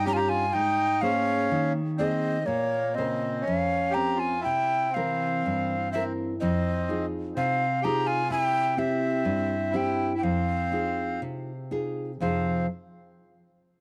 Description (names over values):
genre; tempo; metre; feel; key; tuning
fado-style ballad; 62 BPM; 2/4; rubato; F minor; A4 = 441 Hz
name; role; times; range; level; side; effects
breathy mellow tenor recorder; melody; 0.0-12.7 s; Db5 to Bb5; -30 LUFS; equal; none
accordion; second line; 0.0-12.7 s; Bb3 to G4; -34 LUFS; equal; none
nylon-string guitar; accompaniment; 0.0-12.7 s; F2 to C5; -31 LUFS; equal; none
room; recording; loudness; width
small room ambience; dry, close 1970s-style studio recording; -27 LUFS; mono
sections
0.0-12.2 A section; 12.2-13.8 B section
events
none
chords
0.0 Eb7/G; 0.5 Abadd9; 2.5 Bbmadd9; 4.5 C7; 6.4 Fm7; 8.3 C; 10.2 Fm7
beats
| 0.54 1.50 | 2.47 3.45 | 4.46 5.45 | 6.42 7.37 | 8.31 9.26 | 10.23 11.21 | 12.21